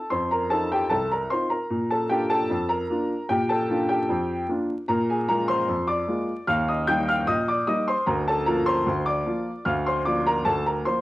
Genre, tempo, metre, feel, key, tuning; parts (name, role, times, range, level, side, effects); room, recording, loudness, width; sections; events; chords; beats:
ragtime piano; 75 BPM; 2/4; straight; Bb major; A4 = 440 Hz
clear upright piano; solo; 0.0-11.0 s; C2 to G6; -22 LUFS; equal; cassette tape
moderate studio reverb, RT60 0.7 s; home recording on cassette, vinyl crackle; -22 LUFS; side -17 dB against mid
0.0-11.0 A section
0.0 F7; 1.7 Bb; 4.9 Bb7; 6.5 Eb; 8.1 Bb/D
| 0.11 0.90 | 1.70 2.50 | 3.29 4.09 | 4.88 5.68 | 6.47 7.27 | 8.07 8.87 | 9.66 10.46